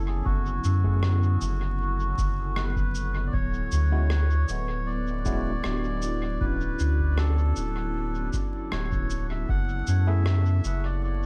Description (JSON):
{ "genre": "ambient dub", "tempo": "78 BPM", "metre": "4/4", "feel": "straight", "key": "unclear", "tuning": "A4 = 440 Hz", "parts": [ { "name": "melodica", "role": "melody", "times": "0.0-11.3 s", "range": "F#4 to F#5", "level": "-37 LUFS", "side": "equal", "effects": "dub echo" }, { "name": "warbly tape-like pad", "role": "sustained chords", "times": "0.0-11.3 s", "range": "C#3 to A4", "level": "-39 LUFS", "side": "equal", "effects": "chorus, built-in reverb" }, { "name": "vibraphone with soft mallets", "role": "arpeggios", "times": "0.0-11.3 s", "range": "B3 to C#6", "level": "-40 LUFS", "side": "equal", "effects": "dub echo" }, { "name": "soft dub sub bass", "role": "bass", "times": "0.0-11.3 s", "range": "D1 to F#2", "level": "-27 LUFS", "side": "equal", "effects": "none" }, { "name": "electronic kick drum", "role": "drums", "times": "0.3-9.6 s", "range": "none", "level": "-33 LUFS", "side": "equal", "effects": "none" }, { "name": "electronic shaker and rim click", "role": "drums", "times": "0.6-10.8 s", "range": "none", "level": "-40 LUFS", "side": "equal", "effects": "dub echo" }, { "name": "overdriven tine electric piano", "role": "stabs", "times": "0.8-10.2 s", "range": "G#3 to G#4", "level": "-41 LUFS", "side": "equal", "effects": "fast tremolo, dub echo" } ], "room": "digital ambience", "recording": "echo-heavy mix, vinyl crackle, faint mains hum", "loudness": "-26 LUFS", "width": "mono", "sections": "0.0-11.3 A section", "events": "none", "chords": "0.0 F#m11; 3.3 Dmaj9; 9.5 F#m11" }